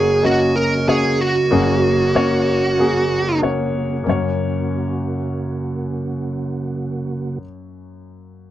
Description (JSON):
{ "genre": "pop", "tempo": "94 BPM", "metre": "4/4", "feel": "straight", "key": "F# major", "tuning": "A4 = 441 Hz", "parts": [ { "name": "high-gain lead guitar", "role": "melody", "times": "0.0-3.4 s", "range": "F#4 to A#4", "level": "-17 LUFS", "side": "right 2 dB", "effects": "distortion, slapback echo" }, { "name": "warm grand piano", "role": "accompaniment", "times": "0.0-8.5 s", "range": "F#1 to D#5", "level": "-20 LUFS", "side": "left 2 dB", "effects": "none" }, { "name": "percussive tonewheel organ", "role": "sustained chords", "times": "0.0-7.4 s", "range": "C#3 to F#4", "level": "-24 LUFS", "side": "right 3 dB", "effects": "overdrive, chorus vibrato, fast rotary speaker" } ], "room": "moderate booth ambience, RT60 0.3 s", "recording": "dry, close 1970s-style studio recording", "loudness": "-17 LUFS", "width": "side -13 dB against mid", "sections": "0.0-4.1 A section; 4.1-6.6 B section", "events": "none", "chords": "0.0 F#", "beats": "0.24 0.87 | 1.51 2.15 2.79 3.43 | 4.07 4.71 5.35 5.99" }